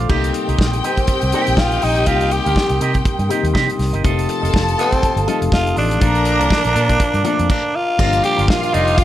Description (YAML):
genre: disco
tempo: 122 BPM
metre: 4/4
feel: swing 56% on 16ths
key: unclear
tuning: A4 = 442 Hz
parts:
  - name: dark baby grand piano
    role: accompaniment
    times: 0.0-9.0 s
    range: Bb2 to F4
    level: -24 LUFS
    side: left 8 dB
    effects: none
  - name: electric guitar with an envelope filter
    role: accompaniment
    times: 0.0-9.0 s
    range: F4 to F5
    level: -26 LUFS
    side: right 7 dB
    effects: none
  - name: glass harmonica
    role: sustained chords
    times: 0.0-9.0 s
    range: A4 to Eb6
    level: -27 LUFS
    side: right 3 dB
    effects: none
  - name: vintage muted fingered electric bass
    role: bass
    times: 0.0-9.0 s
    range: F1 to C3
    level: -20 LUFS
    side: equal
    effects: none
  - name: warm studio string section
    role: second line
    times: 0.1-9.0 s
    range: F4 to Bb5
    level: -23 LUFS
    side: left 2 dB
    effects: none
  - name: warm soul drum kit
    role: drums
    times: 0.1-9.0 s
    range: crash cymbal, hi-hat, kick drum, snare drum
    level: -20 LUFS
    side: equal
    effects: none
  - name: growling tenor saxophone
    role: melody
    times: 0.9-9.0 s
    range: C4 to G4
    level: -19 LUFS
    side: equal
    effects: none
room: light reverb, small room ambience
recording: none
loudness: -14 LUFS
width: side -12 dB against mid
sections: 0.1-8.0 A section; 8.0-9.0 B section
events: stop 7.5-8.0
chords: 0.1 Cm7; 4.0 F7; 6.0 Bbmaj7; 8.0 Gm7